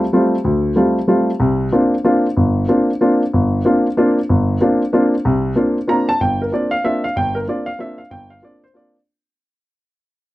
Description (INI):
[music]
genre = jazz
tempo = 188 BPM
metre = 3/4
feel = swing 64% on 8ths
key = unclear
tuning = A4 = 440 Hz
[part]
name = warm baby grand piano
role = solo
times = 0.0-9.0 s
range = G1 to Bb5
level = -14 LUFS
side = equal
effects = none
[sound]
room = light reverb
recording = dry, close 1970s-style studio recording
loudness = -14 LUFS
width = side -17 dB against mid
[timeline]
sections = 0.0-5.2 A section; 5.2-9.1 B section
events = fade-out 5.2-9.1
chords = 0.0 G9sus4; 1.4 C9sus4